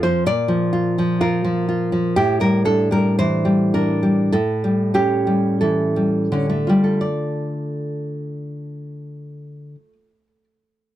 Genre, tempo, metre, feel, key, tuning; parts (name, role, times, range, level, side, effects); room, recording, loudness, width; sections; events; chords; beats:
romantic piece for solo classical guitar; 40-66 BPM; 4/4; rubato; D minor; A4 = 440 Hz
nylon-string guitar; solo; 0.0-10.4 s; F2 to D5; -17 LUFS; equal
little or no reverb; dry, close 1970s-style studio recording; -17 LUFS; side -13 dB against mid
0.0-7.0 A section; 7.0-11.0 B section
slowing down 0.0-7.0
0.3 Bb; 2.2 A7sus4; 4.3 A7; 7.0 Dm
0.26 1.22 | 2.19 3.22 4.35 5.62 | 7.03 8.29 9.56